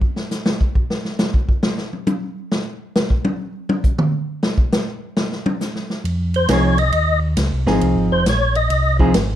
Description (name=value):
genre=soul jazz organ trio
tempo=136 BPM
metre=4/4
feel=swing 66% on 8ths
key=unclear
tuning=A4 = 439 Hz
part: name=swinging big-band drum kit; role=drums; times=0.0-9.3 s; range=hi-hat, kick drum, ride cymbal, snare drum, toms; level=-19 LUFS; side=equal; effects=none
part: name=mellow tonewheel organ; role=bass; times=6.0-9.4 s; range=F1 to F2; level=-19 LUFS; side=equal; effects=chorus vibrato, slow rotary speaker
part: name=percussive tonewheel organ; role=melody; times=6.4-9.0 s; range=C5 to Eb5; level=-18 LUFS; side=left 1 dB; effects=slow rotary speaker, overdrive, chorus vibrato
part: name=vintage hollow-body jazz guitar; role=accompaniment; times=6.5-9.1 s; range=F3 to Ab4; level=-18 LUFS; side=right 1 dB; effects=none
room=moderate studio reverb, RT60 0.8 s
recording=dark, warm production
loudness=-17 LUFS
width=side -11 dB against mid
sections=0.0-9.4 A section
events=tonewheel organ solo 0.0-9.4; drum solo 0.0-6.0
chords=0.0 N.C.; 6.0 Fm7